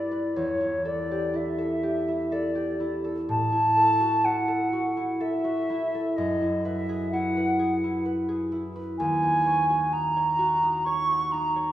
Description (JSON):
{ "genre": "classical, impressionist duo for flute and harp", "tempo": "63 BPM", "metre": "3/4", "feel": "rubato", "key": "unclear", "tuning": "A4 = 440 Hz", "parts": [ { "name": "silver concert flute", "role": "melody", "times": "0.0-11.7 s", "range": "C#5 to C#6", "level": "-25 LUFS", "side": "right 1 dB", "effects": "none" }, { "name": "concert harp", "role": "accompaniment", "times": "0.0-11.7 s", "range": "D#2 to C#5", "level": "-27 LUFS", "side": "equal", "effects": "none" } ], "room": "wet recital hall reverb, RT60 1.8 s", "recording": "heard from further back in the room", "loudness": "-23 LUFS", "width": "side -13 dB against mid", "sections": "0.0-11.7 A section", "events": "none", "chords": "0.4 Em7; 3.3 A5; 6.2 F#m11; 9.0 D#m7" }